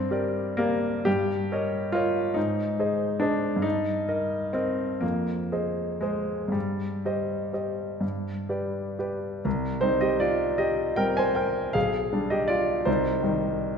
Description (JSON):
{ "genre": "classical, romantic character piece for solo piano", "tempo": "38-54 BPM (dotted quarters)", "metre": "6/8", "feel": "rubato", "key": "C minor", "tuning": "A4 = 440 Hz", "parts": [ { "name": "warm grand piano", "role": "solo", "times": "0.0-13.8 s", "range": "B1 to Ab5", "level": "-24 LUFS", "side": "equal", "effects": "none" } ], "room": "wet concert hall reverb, RT60 1.9 s", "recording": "minimal, uncompressed stereo recording", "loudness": "-24 LUFS", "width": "side -6 dB against mid", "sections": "0.0-9.5 A section; 9.5-13.8 B section", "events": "none", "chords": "0.0 Gm; 1.1 Eb7/G; 2.4 Ab; 3.6 Eb/G; 5.0 Fm7; 6.5 Cm/G; 8.0 G; 9.5 Cm; 11.8 G/B; 12.9 Cm" }